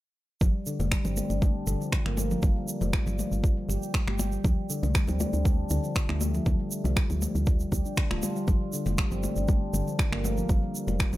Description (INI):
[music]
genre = afro house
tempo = 119 BPM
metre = 4/4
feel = straight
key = G minor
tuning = A4 = 440 Hz
[part]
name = handpan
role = arpeggios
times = 0.4-11.1 s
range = D3 to G4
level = -32 LUFS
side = left 1 dB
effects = sidechain pumping, dub echo
[part]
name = woody FM bass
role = bass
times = 0.4-11.2 s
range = D1 to D2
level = -30 LUFS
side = equal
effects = sidechain pumping
[part]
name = electronic kick drum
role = drums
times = 0.4-11.1 s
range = none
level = -26 LUFS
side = equal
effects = overdrive
[part]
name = congas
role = percussion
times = 0.4-11.2 s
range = none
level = -34 LUFS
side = left 3 dB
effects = none
[part]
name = egg shaker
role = percussion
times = 0.4-11.2 s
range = none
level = -39 LUFS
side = right 4 dB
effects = none
[part]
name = electronic finger snaps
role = drums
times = 0.9-11.1 s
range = none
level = -33 LUFS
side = equal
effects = overdrive
[sound]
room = studio ambience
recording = none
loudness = -25 LUFS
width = side -16 dB against mid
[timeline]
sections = 0.4-11.2 A section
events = none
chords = 0.4 G7(no3); 4.4 N.C.; 8.5 G7(no3)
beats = | 0.41 0.92 1.42 1.93 | 2.43 2.93 3.44 3.94 | 4.45 4.95 5.46 5.96 | 6.46 6.97 7.47 7.98 | 8.48 8.98 9.49 9.99 | 10.50 11.00